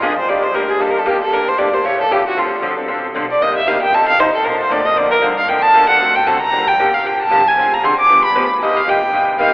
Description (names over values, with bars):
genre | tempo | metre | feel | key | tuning
acoustic string swing (jazz manouche) | 230 BPM | 4/4 | swing 56% on 8ths | unclear | A4 = 441 Hz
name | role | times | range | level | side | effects
warm violin | melody | 0.0-9.5 s | F4 to D6 | -13 LUFS | equal | none
picked steel-string acoustic guitar | accompaniment | 0.0-9.5 s | C3 to Bb4 | -18 LUFS | left 1 dB | none
upright bass | bass | 0.0-9.5 s | G1 to C3 | -36 LUFS | equal | none
room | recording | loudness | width
wet cathedral reverb, RT60 4.9 s | recorded in a church or concert hall, telephone sound | -12 LUFS | side -21 dB against mid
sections
0.0-6.5 A section; 6.5-9.5 A section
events
violin solo 0.0-9.5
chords
0.3 Ebmaj7; 1.3 Em7b5; 1.8 A7; 2.4 Dm7; 3.4 Cm7; 3.9 F7; 4.4 Bbmaj7; 6.0 D7; 6.5 Gm7; 7.6 Dm7b5; 8.1 G7; 8.6 Cm7